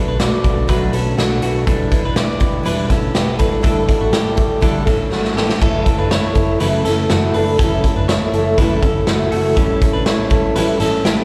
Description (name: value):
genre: jangly indie pop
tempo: 122 BPM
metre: 4/4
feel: straight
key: unclear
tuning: A4 = 440 Hz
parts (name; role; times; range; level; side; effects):
- fingerpicked steel-string acoustic guitar; accompaniment; 0.0-11.2 s; F#2 to B4; -21 LUFS; equal; slapback echo
- direct-recorded clean electric guitar; arpeggios; 0.0-11.2 s; A3 to D5; -25 LUFS; equal; none
- vintage muted picked electric bass; bass; 0.1-11.2 s; E1 to B1; -24 LUFS; equal; none
- raw garage drum kit; drums; 0.2-11.2 s; crash cymbal, hi-hat, kick drum, snare drum; -20 LUFS; equal; none
room: light reverb, studio reverb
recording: live gig heard through the venue's PA, club reverb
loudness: -16 LUFS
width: mono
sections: 0.0-5.6 A section; 5.6-11.2 B section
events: drum fill 5.1-5.6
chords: 0.0 Bm7; 1.7 Em7; 3.4 A7sus4; 5.6 F#m7; 9.6 A7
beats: 0.20 0.69 1.18 | 1.67 2.17 2.66 3.15 | 3.64 4.14 4.63 5.12 | 5.62 6.11 6.61 7.10 | 7.59 8.09 8.58 9.08 | 9.57 10.07 10.56 11.05